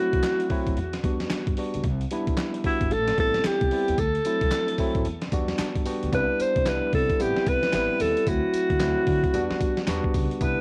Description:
R&B, new jack swing; 112 BPM; 4/4; swing 62% on 16ths; A4 = 441 Hz
warm alto saxophone; melody; 0.0-10.6 s; E4 to C5; -27 LUFS; equal; cassette tape, tape echo
tine electric piano; accompaniment; 0.0-10.6 s; F#3 to A5; -31 LUFS; equal; cassette tape
upright bass; bass; 0.1-10.5 s; G1 to D3; -34 LUFS; equal
dusty soul sampler-style drum kit; drums; 0.1-10.6 s; handclaps, hi-hat, kick drum, snare drum, tambourine; -31 LUFS; equal; cassette tape
group handclap; percussion; 0.2-5.7 s; -47 LUFS; equal
light reverb; home recording on cassette; -25 LUFS; mono
0.0-6.1 A section; 6.1-10.6 B section
tine electric piano fill 5.1-6.1
0.0 D7 (rootless); 0.8 Em7; 1.8 Cmaj9; 2.9 Am7; 4.0 D7; 5.1 Em7; 6.1 Cmaj9; 7.2 Am7; 8.3 D7; 9.3 Em7

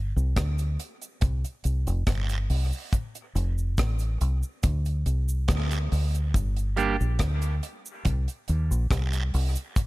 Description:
dub reggae; 70 BPM; 4/4; straight; G minor; A4 = 440 Hz
deep dub fingered electric bass; bass; 0.0-9.6 s; F1 to Eb2; -25 LUFS; equal
cabasa and guiro; percussion; 0.2-9.9 s; -41 LUFS; right 5 dB; dub echo
deep reggae drum kit; drums; 0.4-9.9 s; hi-hat, kick drum, rim click; -28 LUFS; equal
clean electric guitar; accompaniment; 6.8-7.0 s; G3 to G4; -30 LUFS; right 5 dB; dub echo
small room reverb; echo-heavy mix; -24 LUFS; side -20 dB against mid
0.0-9.9 A section
break 0.0-6.3
0.0 G5; 1.2 C5; 2.9 F; 4.6 Csus2; 6.3 Gm; 8.1 N.C.

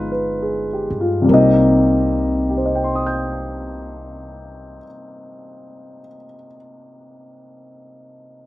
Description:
jazz ballad; 50 BPM; 4/4; swing 68% on 8ths; C minor; A4 = 440 Hz
warm concert grand piano; accompaniment; 0.0-8.5 s; C3 to G6; -17 LUFS; left 1 dB
upright bass; bass; 0.0-4.8 s; G1 to G2; -24 LUFS; equal
little or no reverb; recorded outdoors, with no room sound; -15 LUFS; side -16 dB against mid
0.0-1.3 A section; 1.3-6.1 B section
slowing down 0.0-1.3
0.0 G7b9b13; 1.3 Cm7

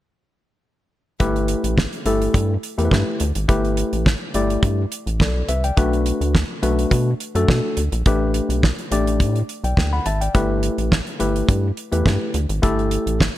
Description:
early-eighties boogie funk; 105 BPM; 4/4; straight; A4 = 440 Hz
tine electric piano; accompaniment; 1.2-13.2 s; A3 to B5; -22 LUFS; left 2 dB
rubbery square bass; bass; 1.2-13.3 s; G1 to B2; -21 LUFS; equal
damped 70s drum kit; drums; 1.2-13.4 s; hi-hat, kick drum, snare drum; -20 LUFS; equal; gated reverb
studio reverb; -17 LUFS; side -14 dB against mid
1.2-13.4 A section
1.2 G69; 5.8 Bm7; 8.1 A9sus4; 10.3 G69

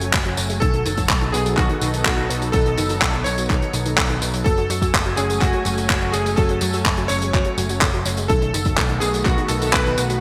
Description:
italo disco; 125 BPM; 4/4; straight; A4 = 439 Hz
bright electric grand piano; melody; 0.0-10.2 s; F#4 to C#5; -27 LUFS; equal; ensemble chorus, delay
lush unison pad; sustained chords; 0.0-10.2 s; D#3 to G#5; -29 LUFS; equal; chorus
analog pluck; arpeggios; 0.0-10.2 s; D#3 to C#4; -31 LUFS; equal; chorus, delay
picked electric bass with an envelope filter; bass; 0.0-10.2 s; F#1 to F#2; -27 LUFS; equal; tube saturation
damped 70s drum kit; drums; 0.0-10.2 s; handclaps, hi-hat, tambourine; -25 LUFS; equal; small room ambience, gated reverb
electronic kick drum; drums; 0.1-9.8 s; -24 LUFS; equal; overdrive, small room ambience
moderate lush hall reverb, RT60 2.3 s; bright 1980s-style digital production; -20 LUFS; mono
0.0-10.2 A section
0.0 F#madd9; 0.6 B7; 4.5 F#madd9; 8.3 B7

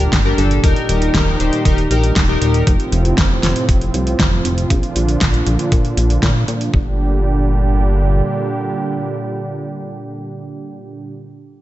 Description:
synthwave; 118 BPM; 4/4; straight; G minor; A4 = 436 Hz
warm analog pad; sustained chords; 0.0-11.1 s; A2 to G4; -21 LUFS; right 2 dB; chorus, vintage 12-bit sampler grit, sidechain pumping
chorused synth bass; bass; 0.0-8.2 s; Eb1 to Bb2; -17 LUFS; equal; sidechain pumping
pop drum kit; drums; 0.0-6.7 s; hi-hat, snare drum; -21 LUFS; equal; gated reverb
sub drop; sound effects; 0.0-0.6 s; -32 LUFS; equal
electronic kick drum; drums; 0.1-6.8 s; -17 LUFS; equal
chorused polysynth; stabs; 0.3-2.6 s; D4 to C5; -21 LUFS; left 4 dB; tape echo
little or no reverb; nothing above 8.0 kHz; -14 LUFS; side -14 dB against mid
0.0-6.7 A section; 6.7-10.8 B section
impact 0.0-0.6
0.0 Gm; 0.6 Eb; 2.7 F; 4.7 Bb; 6.7 Gm

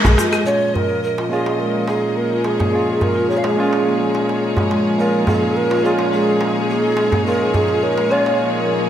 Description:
organic downtempo; 106 BPM; 4/4; straight; Bb minor pentatonic; A4 = 445 Hz
bright symphonic string section; sustained chords; 0.0-8.9 s; F3 to Eb5; -25 LUFS; left 2 dB
marimba with medium mallets; arpeggios; 0.0-8.4 s; Ab3 to Db5; -22 LUFS; left 1 dB; low-pass filter
darbuka; percussion; 0.0-8.4 s; -24 LUFS; right 1 dB
barky tine electric piano; accompaniment; 0.4-8.9 s; Bb2 to F4; -21 LUFS; right 1 dB; overdrive
breathy mellow Native American-style cedar flute; melody; 0.5-8.4 s; Ab4 to F5; -20 LUFS; right 1 dB; digital delay
swell; sound effects; 8.5-8.9 s; -22 LUFS; left 3 dB
moderate lush hall reverb, RT60 2.4 s; bright 1980s-style digital production; -15 LUFS; side -10 dB against mid
0.5-8.9 A section
filter sweep on marimba 0.5-8.9; break 8.4-8.9; swell 8.5-8.9
0.5 Bbm7

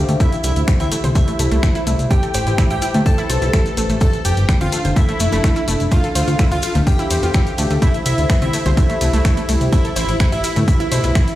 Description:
melodic techno; 126 BPM; 4/4; straight; A minor; A4 = 440 Hz
soft supersaw; melody; 0.0-11.4 s; E4 to A4; -24 LUFS; equal; sidechain pumping, dub echo
glassy wavetable pluck; second line; 0.0-11.4 s; E5 to A5; -28 LUFS; right 1 dB; chorus, sidechain pumping, dub echo
dark analog pad; sustained chords; 0.0-11.4 s; F3 to F5; -27 LUFS; left 1 dB; chorus, phaser, sidechain pumping
analog pluck; arpeggios; 0.0-11.2 s; A3 to C5; -25 LUFS; equal; chorus, sidechain pumping, dub echo
fat analog bass; bass; 0.0-11.1 s; D1 to A2; -18 LUFS; equal; sidechain pumping
house drum kit; drums; 0.1-11.4 s; congas, finger snaps, hi-hat, ride cymbal; -26 LUFS; left 1 dB; sidechain pumping on hats, sidechain pumping on perc, sidechain pumping on cymbals
maracas; percussion; 0.1-11.4 s; -30 LUFS; left 4 dB
electronic kick drum; drums; 0.2-11.3 s; -17 LUFS; equal
light reverb; played on a big sound system in a bare room, stone room reverb; -14 LUFS; side -14 dB against mid
0.0-11.4 A section
0.2 C; 2.1 Am7; 4.0 F6; 5.9 Dm7; 7.8 C; 9.7 Am7

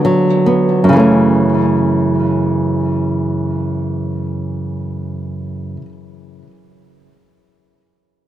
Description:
pop; 46 BPM (dotted quarters); 6/8; straight; F# minor; A4 = 440 Hz
nylon-string guitar; solo; 0.0-5.9 s; F#2 to C#4; -13 LUFS; right 1 dB; ping-pong delay
light reverb; -13 LUFS; side -12 dB against mid
0.9-6.1 A section
0.0 Bm/D; 0.9 F#m7

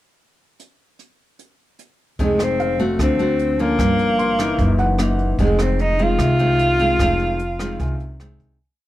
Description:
bossa nova; 150 BPM; 4/4; straight; F minor; A4 = 440 Hz
jazz brush drum kit; drums; 0.6-8.5 s; hi-hat, kick drum, rim click; -25 LUFS; right 1 dB
breathy tenor saxophone; melody; 2.2-8.2 s; Ab3 to F4; -19 LUFS; equal
nylon-string guitar; accompaniment; 2.2-8.6 s; F2 to Gb4; -22 LUFS; equal
upright bass; bass; 2.2-8.6 s; F1 to D2; -23 LUFS; equal
warm baby grand piano; accompaniment; 2.6-8.6 s; F5 to C6; -28 LUFS; right 2 dB
moderate studio ambience, RT60 0.5 s; -16 LUFS; side -15 dB against mid
0.6-2.2 pickup bar; 2.2-8.6 A section
fade-out 7.0-8.6
0.6 N.C.; 2.2 Fm7; 3.0 D7; 3.8 Gm7b5; 4.6 Gb6; 5.4 Fm7

